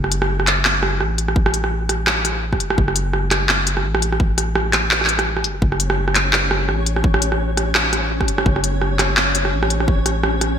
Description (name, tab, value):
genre	half-time drum and bass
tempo	169 BPM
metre	4/4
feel	swing 57% on 16ths, half-time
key	F# minor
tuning	A4 = 440 Hz
part	long sustained 808-style bass	bass	0.0-10.6 s	F#1 to A1	-22 LUFS	equal	none
part	organic electronic drum kit	drums	0.0-10.5 s	handclaps, hi-hat, rim click	-18 LUFS	right 1 dB	gated reverb
part	electronic kick drum	drums	1.4-10.0 s	none	-18 LUFS	equal	none
part	flickering grainy texture	texture	5.9-10.6 s	C#4 to C#5	-26 LUFS	left 2 dB	built-in reverb, lush chorus
room	light reverb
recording	bright 1980s-style digital production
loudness	-16 LUFS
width	side -8 dB against mid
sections	0.0-10.6 A section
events	break 5.3-5.6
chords	0.0 F#5